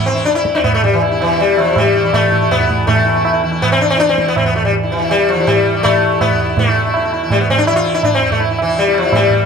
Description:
indian classical, Hindustani; 162 BPM; 5/4; straight; E raga bhairavi; A4 = 440 Hz
sitar; melody; 0.0-9.5 s; E3 to F4; -13 LUFS; left 3 dB
tanpura; drone; 0.0-9.5 s; E2 to E3; -22 LUFS; right 2 dB
tabla; percussion; 0.3-9.4 s; -18 LUFS; right 4 dB
moderate recital hall reverb, RT60 1.7 s; -11 LUFS; side -6 dB against mid
0.0-9.5 A section
speeding up 0.0-9.5

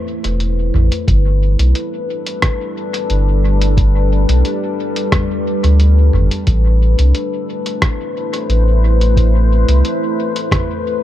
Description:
ambient dub; 89 BPM; 4/4; straight; A minor; A4 = 441 Hz
deep dark ambient pad; sustained chords; 0.0-11.0 s; G3 to C5; -19 LUFS; left 2 dB; chorus, built-in reverb
warm sub bass; bass; 0.2-9.8 s; E1 to D2; -11 LUFS; equal
lo-fi sampler-style drum kit; drums; 0.2-10.7 s; hi-hat, rim click, toms; -21 LUFS; equal; dub echo
electronic kick drum; drums; 1.1-10.7 s; -16 LUFS; equal
little or no reverb; echo-heavy mix; -12 LUFS; side -13 dB against mid
0.0-11.0 A section
0.0 Am; 1.1 G; 6.5 Am

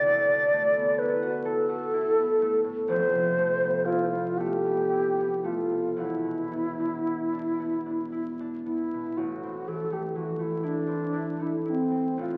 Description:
classical, impressionist duo for alto flute and harp; 37-43 BPM (dotted quarters); 6/8; rubato; A minor; A4 = 439 Hz
mellow alto flute; melody; 0.0-12.4 s; C4 to D5; -28 LUFS; equal
concert harp; accompaniment; 0.0-12.4 s; E1 to A4; -34 LUFS; equal
wet recital hall reverb, RT60 1.7 s; very old 78 rpm record, vinyl crackle, faint mains hum; -27 LUFS; mono
0.0-9.2 A section; 9.2-12.4 B section
0.1 D69; 2.9 Fmaj7#11; 6.0 E5; 9.2 Am

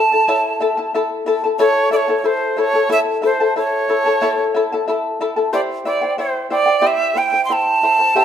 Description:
andean folk, Andean ensemble; 61 BPM (dotted quarters); 6/8; straight; A4 = 440 Hz
bright quena; melody; 0.0-8.2 s; C5 to C6; -17 LUFS; right 3 dB
charango; accompaniment; 0.0-8.2 s; E4 to A5; -18 LUFS; left 3 dB
wet stone room reverb, RT60 1.1 s; band playing live in one room; -15 LUFS; side -9 dB against mid
0.0-8.2 A section
0.0 A; 5.5 C

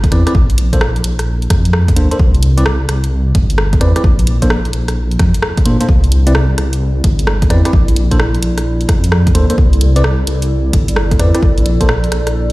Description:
UK garage, two-step garage; 130 BPM; 4/4; swing 65% on 16ths; A4 = 442 Hz
dark detuned saw bass; bass; 0.0-12.5 s; G1 to Bb2; -13 LUFS; equal
electronic kick drum; drums; 0.0-11.9 s; -14 LUFS; equal
garage drum kit; drums; 0.0-12.5 s; hi-hat, rim click; -21 LUFS; right 1 dB
warbly tape-like pad; texture; 0.0-12.5 s; E4 to D5; -25 LUFS; right 1 dB; chorus, built-in reverb, sidechain pumping
tine electric piano; stabs; 0.1-11.9 s; Bb3 to D5; -20 LUFS; equal; phaser, low-pass filter, tape echo
digital ambience; played on a big sound system in a bare room, large studio reverb; -10 LUFS; side -20 dB against mid
0.0-12.5 A section
0.3 Bbmaj7; 2.2 Cadd9; 4.0 Bbmaj7; 5.9 Cadd9; 7.7 Bbmaj7; 9.6 Cadd9; 11.4 Bbmaj7

